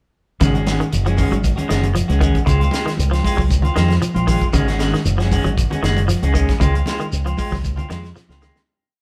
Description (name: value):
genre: afrobeat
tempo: 116 BPM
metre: 4/4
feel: straight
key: Ab mixolydian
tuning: A4 = 440 Hz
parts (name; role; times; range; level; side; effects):
- clean electric guitar; arpeggios; 0.4-8.6 s; Db3 to Gb3; -27 LUFS; equal; none
- semi-hollow electric guitar; stabs; 0.4-8.6 s; Eb3 to Gb4; -25 LUFS; equal; spring reverb
- fingered electric bass with an envelope filter; bass; 0.4-8.5 s; Gb1 to F2; -21 LUFS; equal; none
- tight funk drum kit; drums; 0.4-8.7 s; hi-hat, kick drum, snare drum; -24 LUFS; equal; none
- congas; percussion; 0.4-8.7 s; none; -31 LUFS; equal; none
- shekere; percussion; 0.4-8.7 s; none; -31 LUFS; equal; none
room: light reverb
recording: band playing live in one room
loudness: -18 LUFS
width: mono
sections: 0.4-8.7 groove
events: fade-out 6.6-8.7; drum fill 8.2-8.7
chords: 0.4 Ab7sus4; 2.5 Dbmaj7; 4.5 Ab7sus4; 6.6 Dbmaj7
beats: | 0.41 0.92 1.44 1.95 | 2.47 2.99 3.50 4.02 | 4.54 5.05 5.57 6.09 | 6.61 7.12 7.64 8.16